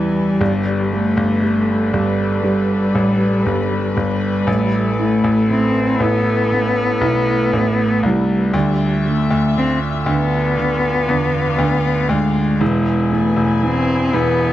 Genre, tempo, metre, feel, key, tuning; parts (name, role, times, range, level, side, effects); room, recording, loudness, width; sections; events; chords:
pop; 59 BPM; 4/4; straight; A4 = 439 Hz
dark cello; melody; 0.0-14.5 s; G3 to C4; -18 LUFS; left 2 dB
felt-muted upright piano; accompaniment; 0.0-14.5 s; D3 to E4; -21 LUFS; right 5 dB
warm studio string section; sustained chords; 0.0-14.5 s; D3 to G#5; -24 LUFS; left 2 dB
bright grand piano; bass; 0.0-14.5 s; E1 to E2; -21 LUFS; left 1 dB
small room ambience; dry, close 1970s-style studio recording; -15 LUFS; side -13 dB against mid
0.0-14.5 A section
0.4 Gadd9; 4.5 Asus2; 8.5 Dmadd9; 12.6 E